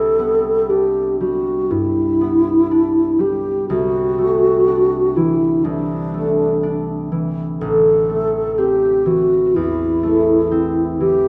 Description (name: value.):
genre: classical, impressionist duo for alto flute and harp.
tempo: 61 BPM.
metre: 4/4.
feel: rubato.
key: C lydian.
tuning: A4 = 440 Hz.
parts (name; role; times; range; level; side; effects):
mellow hollow alto flute; melody; 0.0-11.3 s; D4 to A4; -18 LUFS; equal; none.
concert harp; accompaniment; 0.0-11.3 s; A1 to E4; -22 LUFS; equal; none.
room: wet recital hall reverb, RT60 1.5 s.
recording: dark, warm production.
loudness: -17 LUFS.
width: mono.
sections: 0.0-11.3 A section.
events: none.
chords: 0.0 Cmaj9; 3.7 D9/C; 7.6 Am.